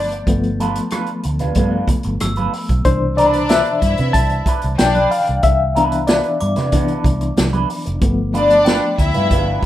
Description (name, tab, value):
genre	lush 1970s-style soul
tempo	93 BPM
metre	4/4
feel	straight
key	C major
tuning	A4 = 441 Hz
part	warm studio string section	second line	0.0-9.6 s	D4 to E5	-18 LUFS	left 2 dB	none
part	barky reed electric piano	accompaniment	0.0-9.7 s	B2 to A5	-20 LUFS	left 3 dB	overdrive, fast tremolo
part	vintage muted fingered electric bass	bass	0.0-9.6 s	F1 to C3	-21 LUFS	right 1 dB	none
part	glockenspiel with brass mallets	texture	0.0-9.7 s	G5 to A6	-32 LUFS	left 2 dB	none
part	electric guitar through a small old amp	riff	0.1-9.7 s	D4 to B4	-23 LUFS	right 3 dB	wah, spring reverb
part	vintage drum kit	drums	0.1-9.7 s	hi-hat, kick drum, rim click, snare drum	-19 LUFS	equal	none
part	congas	percussion	0.3-9.7 s	none	-27 LUFS	right 4 dB	none
room	moderate studio reverb, RT60 0.6 s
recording	rough home demo mix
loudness	-14 LUFS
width	side -13 dB against mid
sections	0.0-9.7 A section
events	reed electric piano solo 0.0-9.7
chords	0.0 G7; 2.9 Cmaj9; 8.0 G7